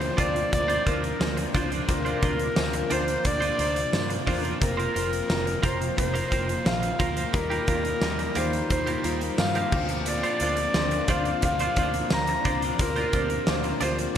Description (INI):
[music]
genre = 1980s-style pop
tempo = 88 BPM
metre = 4/4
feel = straight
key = Bb major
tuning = A4 = 440 Hz
[part]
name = warm clarinet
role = melody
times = 0.0-14.0 s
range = Bb4 to Bb5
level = -28 LUFS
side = left 1 dB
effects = none
[part]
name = biting overdriven guitar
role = accompaniment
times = 0.0-14.2 s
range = Bb2 to F4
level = -38 LUFS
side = right 2 dB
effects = none
[part]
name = clear baby grand piano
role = accompaniment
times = 0.0-14.2 s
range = G3 to C5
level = -32 LUFS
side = left 4 dB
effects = wide subtle chorus
[part]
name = soft string machine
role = sustained chords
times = 0.0-14.2 s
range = C3 to G4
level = -35 LUFS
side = left 1 dB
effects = ensemble chorus
[part]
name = twelve-string electric guitar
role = riff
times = 0.0-14.2 s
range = Bb3 to C5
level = -32 LUFS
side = right 4 dB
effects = lush chorus, digital delay
[part]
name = vintage muted fingered electric bass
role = bass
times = 0.0-14.1 s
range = F1 to G2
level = -32 LUFS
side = equal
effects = none
[part]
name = big rock drum kit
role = drums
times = 0.0-14.2 s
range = crash cymbal, hi-hat, kick drum, snare drum, tambourine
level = -28 LUFS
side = equal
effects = gated reverb
[sound]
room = moderate lush hall reverb, RT60 3.0 s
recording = bright 1980s-style digital production, lossy compression artefacts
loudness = -23 LUFS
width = side -9 dB against mid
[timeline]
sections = 0.0-14.2 A section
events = none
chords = 0.0 Bbadd9; 4.6 Fsus4; 7.3 Ebadd9; 9.7 Bbadd9